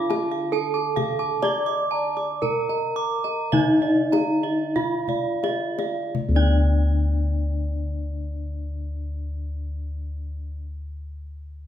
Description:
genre	Javanese gamelan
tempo	40-72 BPM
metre	4/4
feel	straight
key	D pelog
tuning	A4 = 440 Hz
part	gamelan-type bronze metallophone	melody	0.0-10.6 s	D4 to D5	-25 LUFS	equal	none
part	gamelan-type bossed gongs	arpeggios	0.0-10.6 s	D5 to D6	-32 LUFS	left 2 dB	none
part	gamelan-type bronze metallophone	arpeggios	0.0-10.6 s	D5 to D6	-29 LUFS	right 6 dB	none
part	gamelan-type bossed gongs	bass	0.0-10.6 s	D2 to D5	-26 LUFS	left 1 dB	none
part	kendang	percussion	0.1-6.9 s	none	-30 LUFS	left 4 dB	none
room	wet recital hall reverb, RT60 1.5 s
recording	minimal, uncompressed stereo recording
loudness	-21 LUFS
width	side -10 dB against mid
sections	0.0-6.2 A section; 6.2-11.7 B section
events	slowing down 0.0-6.2; drum fill 4.8-6.2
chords	none

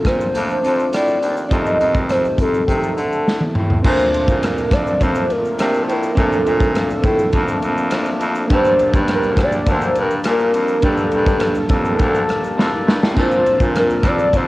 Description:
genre	indie pop, bedroom pop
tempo	103 BPM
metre	4/4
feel	straight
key	Bb major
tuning	A4 = 440 Hz
part	warbly nostalgic lead	melody	0.0-14.5 s	A4 to Eb5	-19 LUFS	equal	analog chorus, cassette tape, tape echo
part	chorused retro synth keys	accompaniment	0.0-14.5 s	Bb3 to Bb5	-25 LUFS	right 2 dB	cassette tape
part	electric guitar through a small old amp	accompaniment	0.0-14.5 s	F2 to A4	-24 LUFS	left 2 dB	wide subtle chorus, warbly pitch drift, cassette tape
part	breathy baritone saxophone	bass	0.0-14.5 s	D2 to D3	-22 LUFS	equal	none
part	raw garage drum kit	drums	0.0-14.5 s	crash cymbal, hi-hat, kick drum, ride cymbal, rim click, shaker, snare drum, splash cymbal, toms	-20 LUFS	equal	cassette tape
room	light reverb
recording	home recording on cassette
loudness	-14 LUFS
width	side -18 dB against mid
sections	0.0-3.8 A section; 3.8-14.5 B section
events	drum fill 3.3-3.8, 12.6-13.2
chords	0.0 Bbmaj7; 1.5 F7; 3.8 Bbmaj7; 8.5 Gmadd9; 13.2 Bbmaj7

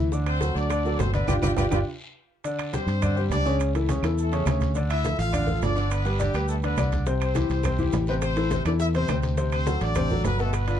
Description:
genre	latin, salsa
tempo	208 BPM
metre	4/4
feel	straight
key	C major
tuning	A4 = 438 Hz
part	bright concert grand piano	accompaniment	0.0-10.8 s	B2 to D5	-28 LUFS	left 2 dB	none
part	fingered electric bass	bass	0.0-10.8 s	G1 to G2	-25 LUFS	right 1 dB	none
part	bongos	percussion	0.1-1.8, 7.1-10.7 s	none	-36 LUFS	left 6 dB	none
part	congas	percussion	0.1-10.8 s	none	-31 LUFS	equal	none
part	guiro	percussion	0.1-10.8 s	none	-46 LUFS	left 3 dB	none
part	maracas	percussion	0.1-10.8 s	none	-46 LUFS	right 7 dB	none
part	brilliant horn section	melody	0.3-10.8 s	G3 to F5	-30 LUFS	equal	none
part	claves	percussion	0.3-10.7 s	none	-41 LUFS	right 8 dB	none
part	timbales	percussion	0.3-10.8 s	none	-35 LUFS	right 8 dB	none
room	light reverb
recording	dark, warm production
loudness	-22 LUFS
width	side -10 dB against mid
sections	0.0-2.4 A section; 2.4-10.8 A section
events	band accent 1.3-2.4; drum fill 1.6-2.4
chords	0.1 D7; 1.3 G7(no3); 2.4 Csus2; 3.6 A/C#; 4.8 Dm; 5.9 G; 7.1 C; 8.2 Am; 9.4 D7

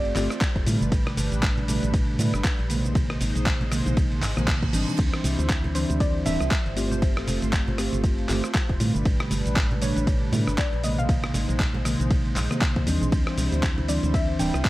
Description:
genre	deep house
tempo	118 BPM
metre	4/4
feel	swing 58% on 16ths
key	D dorian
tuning	A4 = 440 Hz
part	mallet-like synth pluck	melody	0.0-0.6 s	D5	-32 LUFS	right 2 dB	chorus, analog delay
part	warm analog pad	sustained chords	0.0-14.7 s	G3 to C5	-34 LUFS	equal	chorus, sidechain pumping
part	mellow tine electric piano	stabs	0.0-14.5 s	B2 to G4	-28 LUFS	equal	slow stereo tremolo, sidechain pumping, analog delay
part	organ-like FM bass	bass	0.0-14.6 s	D1 to A2	-27 LUFS	equal	sidechain pumping
part	dusty soul sampler-style drum kit	drums	0.1-14.7 s	crash cymbal, handclaps, hi-hat, ride cymbal, rim click, shaker	-31 LUFS	equal	none
part	congas	percussion	0.2-14.5 s	none	-34 LUFS	right 1 dB	none
part	electronic kick drum	drums	0.4-14.7 s	none	-24 LUFS	equal	overdrive
part	reverse cymbal	sound effects	4.2-5.0 s	none	-38 LUFS	right 5 dB	none
part	soft round pluck	melody	5.8-14.7 s	C5 to G5	-34 LUFS	right 1 dB	chorus, tape echo
room	light reverb, digital ambience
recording	vinyl crackle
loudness	-21 LUFS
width	side -17 dB against mid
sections	0.0-14.7 A section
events	reverse cymbal 4.2-5.0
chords	0.0 G9sus4; 0.7 A9sus4; 2.7 Bb9sus4; 5.0 D9sus4; 6.8 G9sus4; 8.8 A9sus4; 10.8 Bb9sus4; 13.1 D9sus4

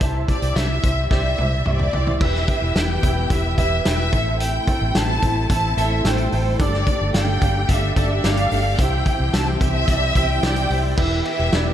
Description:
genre	piano-driven pop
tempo	110 BPM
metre	4/4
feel	straight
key	unclear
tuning	A4 = 438 Hz
part	clear grand piano	accompaniment	0.0-11.7 s	G2 to G5	-26 LUFS	right 2 dB	ensemble chorus
part	vintage muted fingered electric bass	bass	0.0-11.7 s	E1 to C2	-22 LUFS	equal	none
part	loose indie drum kit	drums	0.0-11.7 s	crash cymbal, hi-hat, kick drum, ride cymbal, snare drum, toms	-22 LUFS	equal	none
part	warm symphonic violin section	melody	0.3-11.7 s	C5 to A5	-24 LUFS	equal	analog delay
part	warm studio string section	sustained chords	2.2-11.7 s	C3 to G4	-30 LUFS	left 2 dB	none
room	light reverb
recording	none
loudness	-17 LUFS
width	side -10 dB against mid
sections	0.0-2.2 A section; 2.2-11.0 B section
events	drum fill 1.1-2.2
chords	0.0 C; 2.2 Em; 4.1 Am; 6.6 Gsus2; 8.8 C; 11.0 Em

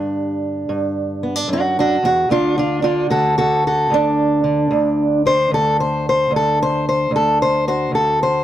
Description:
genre	acoustic country blues, solo or duo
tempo	74 BPM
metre	4/4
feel	swing 68% on 8ths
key	D major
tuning	A4 = 441 Hz
part	fingerpicked steel-string acoustic guitar	solo	0.0-8.4 s	D2 to C5	-15 LUFS	equal	none
room	light reverb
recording	close, detailed microphones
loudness	-15 LUFS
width	side -12 dB against mid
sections	0.0-8.4 A section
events	none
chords	0.0 G5; 2.3 D

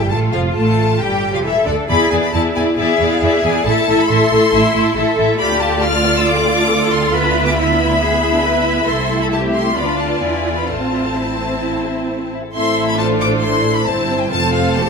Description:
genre	quick classical-period movement for string orchestra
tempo	136 BPM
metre	4/4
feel	rubato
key	A minor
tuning	A4 = 440 Hz
part	rich studio violin section	melody	0.0-14.9 s	D5 to F6	-20 LUFS	left 4 dB	none
part	warm studio violin section	second line	0.0-14.9 s	A3 to E5	-20 LUFS	left 4 dB	none
part	rich studio viola section	accompaniment	0.0-14.9 s	D3 to G4	-19 LUFS	right 1 dB	none
part	dark studio double bass section	bass	0.0-14.9 s	E1 to E2	-22 LUFS	right 4 dB	none
part	rich studio cello section	bass	0.0-14.9 s	E2 to B4	-21 LUFS	right 3 dB	none
room	wet recital hall reverb, RT60 1.9 s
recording	minimal, uncompressed stereo recording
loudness	-13 LUFS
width	side -5 dB against mid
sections	0.0-12.5 A section; 12.5-14.9 A section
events	none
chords	0.1 F; 1.0 Fmaj13; 1.9 E7; 3.7 Am; 5.4 Dm; 7.1 E7/D; 8.9 Am/C; 9.8 Bdim/D; 10.2 E7; 10.7 Am; 14.3 F

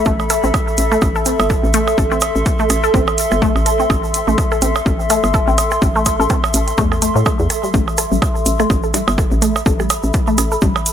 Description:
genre	minimal techno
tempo	125 BPM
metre	4/4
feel	swing 57% on 16ths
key	A minor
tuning	A4 = 440 Hz
part	resonant blip pluck	riff	0.0-10.7 s	G3 to A4	-20 LUFS	left 1 dB	chorus, phaser, sidechain pumping, tape echo
part	hollow knocking FM bass	bass	0.0-10.9 s	G1 to A2	-20 LUFS	equal	sidechain pumping
part	warbly tape-like pad	texture	0.0-10.9 s	A4 to C6	-20 LUFS	left 1 dB	chorus, built-in reverb, phaser, sidechain pumping
part	electronic kick drum	drums	0.1-10.7 s	none	-18 LUFS	equal	overdrive
part	egg shaker	percussion	0.1-10.9 s	none	-27 LUFS	right 4 dB	none
part	percussion blips	percussion	0.2-10.8 s	none	-23 LUFS	right 7 dB	tape echo
part	electronic hi-hat	drums	0.3-10.9 s	none	-20 LUFS	equal	overdrive
room	light reverb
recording	none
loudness	-13 LUFS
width	side -9 dB against mid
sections	0.0-10.9 A section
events	none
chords	0.0 Am

